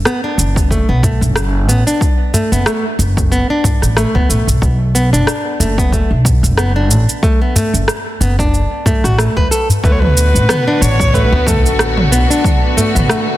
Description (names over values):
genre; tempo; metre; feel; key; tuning
organic downtempo; 92 BPM; 4/4; swing 56% on 16ths; B minor; A4 = 442 Hz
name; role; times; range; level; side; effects
nylon-string guitar; arpeggios; 0.1-13.3 s; A3 to B4; -18 LUFS; equal; tape echo
deep house drum kit; drums; 0.1-13.2 s; cabasa, rim click, toms; -18 LUFS; right 1 dB; overdrive
upright bass; bass; 0.4-13.1 s; F#1 to D2; -14 LUFS; equal; none
electronic kick drum; drums; 0.6-12.6 s; none; -15 LUFS; equal; overdrive
udu; percussion; 1.0-12.9 s; none; -18 LUFS; left 1 dB; none
warm kamancheh; melody; 9.8-12.1 s; A4 to C#5; -19 LUFS; equal; digital delay
warm studio string section; sustained chords; 9.8-13.4 s; D3 to F#4; -20 LUFS; left 1 dB; sidechain pumping
room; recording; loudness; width
light reverb, small room ambience; dense, heavily limited modern master; -11 LUFS; side -15 dB against mid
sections
0.0-13.4 A section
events
none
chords
0.0 Bm7; 9.8 D6